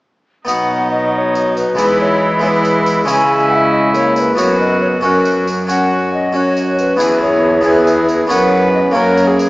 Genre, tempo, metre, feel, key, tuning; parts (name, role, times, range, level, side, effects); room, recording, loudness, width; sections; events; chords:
classical, renaissance-style consort dance; 92 BPM (dotted quarters); 6/8; straight; B major; A4 = 440 Hz
harpsichord; accompaniment; 0.4-9.5 s; E2 to G#4; -17 LUFS; equal
mellow hollow alto recorder; melody; 0.5-9.5 s; A#4 to G#5; -17 LUFS; left 1 dB
warm viola; second line; 0.5-9.5 s; D#4 to B4; -18 LUFS; right 1 dB
mellow trombone; accompaniment; 0.5-9.5 s; F#3 to E4; -18 LUFS; equal
rich cello; bass; 0.5-9.5 s; E2 to E3; -20 LUFS; equal
tambourine; percussion; 0.5-9.5 s; -32 LUFS; right 2 dB
wet church reverb, RT60 3.2 s; small speaker sound; -11 LUFS; side -20 dB against mid
0.5-9.5 A section
0.5 B; 1.8 E; 3.1 C#m; 4.4 F#sus4; 5.0 F#; 7.0 E; 8.3 F#sus4; 9.0 F#